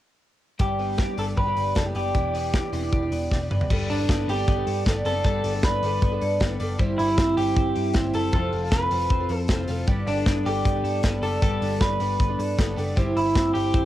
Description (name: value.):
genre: jangly indie pop.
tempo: 155 BPM.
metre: 4/4.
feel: straight.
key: G major.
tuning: A4 = 441 Hz.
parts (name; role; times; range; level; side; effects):
electric guitar through a small old amp; melody; 0.6-13.9 s; D4 to B4; -27 LUFS; equal; cassette tape, plate reverb.
picked twelve-string acoustic guitar; accompaniment; 0.6-13.9 s; E3 to A4; -28 LUFS; right 2 dB; cassette tape, plate reverb.
twelve-string electric guitar; arpeggios; 0.6-13.9 s; E3 to A4; -32 LUFS; left 4 dB; wide subtle chorus, cassette tape, plate reverb.
vintage muted picked electric bass; bass; 0.6-13.9 s; E1 to G2; -29 LUFS; equal; none.
modern studio drum kit; drums; 0.6-13.8 s; crash cymbal, hi-hat, kick drum, snare drum, toms; -25 LUFS; equal; cassette tape.
room: moderate booth ambience, RT60 0.2 s.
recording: home recording on cassette.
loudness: -21 LUFS.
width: side -13 dB against mid.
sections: 0.6-3.7 A section; 3.7-13.9 B section.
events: drum fill 3.3-3.7.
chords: 0.6 G; 2.1 Em7; 3.7 Gadd9; 6.8 C/G; 8.3 Fadd9; 9.9 Gadd9; 13.0 C/G.